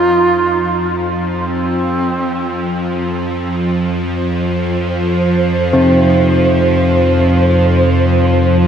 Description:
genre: dark ambient drone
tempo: free time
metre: none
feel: none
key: unclear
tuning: A4 = 443 Hz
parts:
  - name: warm duduk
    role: melody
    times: 0.0-2.9 s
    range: C4 to F4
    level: -17 LUFS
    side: right 2 dB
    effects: shimmer reverb, diffuse ambient delay
  - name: bowed-like drone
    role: drone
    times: 0.0-8.7 s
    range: F2 to F3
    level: -14 LUFS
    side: equal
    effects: built-in reverb
  - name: wind-like tuned noise texture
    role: texture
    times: 4.2-8.7 s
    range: C5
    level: -18 LUFS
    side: right 2 dB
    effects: built-in reverb, shimmer reverb
  - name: carillon bells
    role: arpeggios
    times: 5.7-8.7 s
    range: C4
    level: -14 LUFS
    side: equal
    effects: diffuse ambient delay
room: wet cathedral reverb, RT60 5.5 s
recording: in a vast, echoing space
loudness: -12 LUFS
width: side -8 dB against mid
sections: 0.0-8.7 A section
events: fade-in on synth drone 0.0-8.7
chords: 0.0 F5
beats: free time

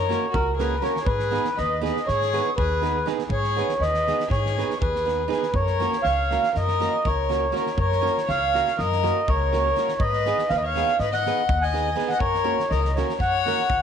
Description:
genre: balkan folk, Balkan wedding band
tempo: 242 BPM (eighths)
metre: 9/8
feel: straight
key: F# major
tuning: A4 = 438 Hz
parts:
  - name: mellow accordion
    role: melody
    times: 0.0-13.8 s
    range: A#4 to G#5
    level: -24 LUFS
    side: right 2 dB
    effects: none
  - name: dark violin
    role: second line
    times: 0.0-13.8 s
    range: F#4 to D#5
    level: -28 LUFS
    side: left 13 dB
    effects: none
  - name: upright bass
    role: bass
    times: 0.0-13.8 s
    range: C#2 to G#2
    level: -27 LUFS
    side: left 1 dB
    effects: none
  - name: flamenco guitar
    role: accompaniment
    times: 0.1-13.6 s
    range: A#3 to B4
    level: -30 LUFS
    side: right 11 dB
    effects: none
  - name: loose indie drum kit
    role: percussion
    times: 0.1-13.8 s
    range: kick drum, snare drum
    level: -32 LUFS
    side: right 1 dB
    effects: none
room: moderate plate reverb, RT60 2.0 s, small room reverb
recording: 1960s-style stereo with parts hard left and right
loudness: -20 LUFS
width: side -8 dB against mid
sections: 0.0-13.8 A section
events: none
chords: 0.0 F#; 1.1 G#m; 5.5 F#; 10.0 G#m; 12.2 F#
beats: 0.07 0.32 0.57 0.82 | 1.07 1.32 1.56 1.81 2.06 2.31 2.56 2.81 3.06 | 3.31 3.55 3.80 4.05 4.30 4.55 4.80 5.05 5.29 | 5.54 5.79 6.04 6.29 6.54 6.79 7.03 7.28 7.53 | 7.78 8.03 8.27 8.52 8.77 9.01 9.26 9.51 9.76 | 10.00 10.25 10.49 10.74 10.99 11.23 11.48 11.72 11.97 | 12.21 12.46 12.70 12.95 13.19 13.43 13.68

